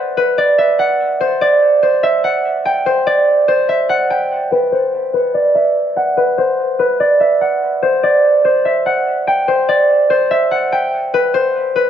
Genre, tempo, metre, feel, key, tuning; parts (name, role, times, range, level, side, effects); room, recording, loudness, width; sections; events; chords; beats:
hip hop; 145 BPM; 4/4; half-time; A4 = 440 Hz
concert harp; solo; 0.0-11.9 s; B4 to G5; -12 LUFS; equal; low-pass filter, dub echo
light reverb, studio ambience; echo-heavy mix; -12 LUFS; side -9 dB against mid
0.0-4.5 A section; 4.5-11.1 B section
filter sweep on harp 4.5-11.1
0.38 0.79 | 1.21 1.62 2.03 2.45 | 2.86 3.27 3.69 4.10 | 4.52 4.93 5.34 5.76 | 6.17 6.58 7.00 7.41 | 7.83 8.24 8.65 9.07 | 9.48 9.89 10.31 10.72 | 11.14 11.55